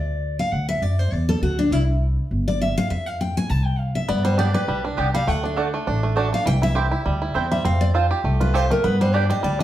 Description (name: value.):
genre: bluegrass.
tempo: 202 BPM.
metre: 4/4.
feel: swing 55% on 8ths.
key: G mixolydian.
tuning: A4 = 440 Hz.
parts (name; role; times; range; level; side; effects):
picked steel-string acoustic guitar; accompaniment; 0.0-9.6 s; D4 to A5; -24 LUFS; left 2 dB; none.
upright bass; bass; 0.0-9.6 s; G1 to G2; -22 LUFS; equal; none.
bluegrass banjo; arpeggios; 4.1-9.6 s; E3 to G4; -25 LUFS; right 3 dB; none.
mandolin; stabs; 4.4-9.2 s; A3 to A5; -26 LUFS; right 5 dB; none.
room: wet studio reverb, RT60 0.8 s.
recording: heard from further back in the room.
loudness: -19 LUFS.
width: side -12 dB against mid.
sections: 0.0-9.6 A section.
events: steel-string acoustic guitar solo 0.0-9.6.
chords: 0.0 N.C.; 0.5 D; 1.7 C5; 2.9 F5; 4.1 G; 5.3 D; 6.5 C; 7.7 F; 8.8 G.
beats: 0.23 | 0.53 0.82 1.12 1.42 | 1.71 2.01 2.31 2.60 | 2.90 3.20 3.50 3.79 | 4.09 4.39 4.68 4.98 | 5.28 5.58 5.87 6.17 | 6.47 6.76 7.06 7.36 | 7.66 7.95 8.25 8.55 | 8.84 9.14 9.44.